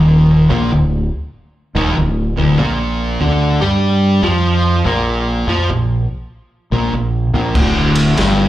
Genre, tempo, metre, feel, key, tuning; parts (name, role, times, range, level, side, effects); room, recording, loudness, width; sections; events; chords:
stoner and doom metal; 97 BPM; 4/4; swing 65% on 8ths; A4 = 440 Hz
fuzz guitar; riff; 0.0-8.5 s; D2 to G4; -15 LUFS; equal; distortion, slapback echo
growling fingered electric bass; bass; 0.0-8.5 s; D1 to G2; -16 LUFS; equal; overdrive
raw garage drum kit; drums; 7.6-8.4 s; crash cymbal, kick drum, ride cymbal, snare drum; -16 LUFS; equal
little or no reverb; live gig heard through the venue's PA, club reverb; -13 LUFS; side -14 dB against mid
0.0-8.5 A section
0.0 Cm9/D (rootless); 2.6 Bb5; 7.6 N.C.